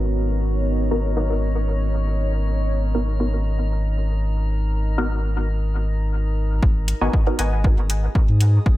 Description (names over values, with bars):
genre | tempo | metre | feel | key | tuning
dub techno | 118 BPM | 4/4 | straight | G# minor | A4 = 440 Hz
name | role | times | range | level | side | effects
deep dark ambient pad | sustained chords | 0.0-6.6 s | B3 to C#5 | -30 LUFS | equal | chorus, built-in reverb, sidechain pumping
warm sub bass | bass | 0.0-8.8 s | G#1 to G#2 | -20 LUFS | equal | sidechain pumping
drifting glass-harmonics texture | texture | 0.0-8.8 s | G#3 to A#4 | -33 LUFS | right 2 dB | chorus, built-in reverb, sidechain pumping
filtered dub chord stab | stabs | 0.9-7.4 s | B3 to A#4 | -28 LUFS | equal | phaser, sidechain pumping, dub echo
electronic kick drum | drums | 6.6-8.8 s | none | -17 LUFS | equal | studio reverb
electronic hi-hat | drums | 6.9-8.5 s | none | -29 LUFS | equal | studio reverb
wavetable chord stab | riff | 7.0-7.6 s | B4 to G#5 | -30 LUFS | left 2 dB | sidechain pumping, dub echo
room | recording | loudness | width
little or no reverb | low-pass filter | -19 LUFS | side -16 dB against mid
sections
0.0-6.6 A section; 6.6-8.8 B section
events
filter sweep on ambient pad 0.0-6.6; filter sweep 0.0-6.6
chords
0.0 G#m7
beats
0.02 | 0.52 1.03 1.54 2.05 | 2.56 3.07 3.58 4.08 | 4.59 5.10 5.61 6.12 | 6.63 7.13 7.64 8.15 | 8.66